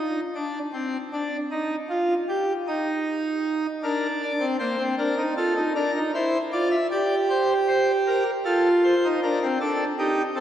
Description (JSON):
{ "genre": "classical, baroque-style 3-part fugue for pipe organ", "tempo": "52 BPM (dotted quarters)", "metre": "12/8", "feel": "straight", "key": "unclear", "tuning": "A4 = 440 Hz", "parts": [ { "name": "pipe organ, full organ", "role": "solo", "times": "0.0-10.4 s", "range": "Bb3 to E5", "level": "-22 LUFS", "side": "equal", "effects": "none" } ], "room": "wet church reverb, RT60 3.3 s", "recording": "dark, warm production, vinyl crackle", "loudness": "-22 LUFS", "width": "side -10 dB against mid", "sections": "0.0-10.4 A section", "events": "none", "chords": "0.0 N.C.; 3.8 Bb; 6.1 C7/E; 8.4 F7", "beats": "0.35 1.51 2.67 | 3.82 4.97 6.13 7.28 | 8.44 9.60" }